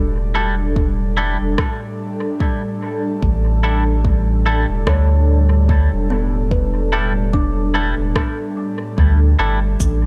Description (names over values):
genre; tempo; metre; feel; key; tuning
ambient dub; 73 BPM; 4/4; swing 59% on 16ths; A mixolydian; A4 = 441 Hz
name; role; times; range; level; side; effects
airy breathy pad; sustained chords; 0.0-10.1 s; A2 to A4; -26 LUFS; equal; chorus
kalimba; arpeggios; 0.0-9.5 s; B3 to D6; -31 LUFS; equal; dub echo
warm sub bass; bass; 0.0-10.1 s; E1 to D2; -19 LUFS; equal; none
semi-hollow electric guitar; stabs; 0.3-9.6 s; G3 to A4; -26 LUFS; equal; dub echo
electronic kick drum; drums; 0.8-10.0 s; none; -22 LUFS; equal; none
electronic rim click and shaker; drums; 1.6-10.0 s; none; -28 LUFS; equal; dub echo
room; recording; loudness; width
digital ambience; echo-heavy mix; -18 LUFS; mono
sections
0.0-10.1 A section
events
none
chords
0.0 A7sus4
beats
0.76 1.58 2.41 | 3.23 4.05 4.87 5.70 | 6.52 7.34 8.16 8.98 | 9.80